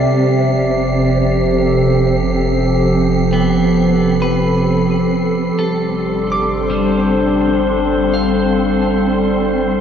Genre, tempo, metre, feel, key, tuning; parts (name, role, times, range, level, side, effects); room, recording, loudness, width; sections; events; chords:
ambient; 66 BPM; 3/4; straight; A4 = 440 Hz
warbly tape-like pad; sustained chords; 0.0-9.8 s; C3 to E5; -14 LUFS; equal; chorus, built-in reverb
clean electric guitar; arpeggios; 0.0-9.8 s; G3 to D6; -24 LUFS; right 1 dB; lush chorus, tape echo
warm sub bass; bass; 0.0-9.8 s; F1 to G1; -26 LUFS; equal
wind-like tuned noise texture; texture; 0.0-9.8 s; C4 to C7; -21 LUFS; right 1 dB; built-in reverb
wet huge ambient reverb, RT60 7.7 s; cassette tape; -13 LUFS; side -8 dB against mid
0.0-9.8 A section
fade-out on clean electric guitar 0.0-9.8; fade-out on sub bass 0.0-9.8
0.1 Fmaj7; 5.6 G7sus4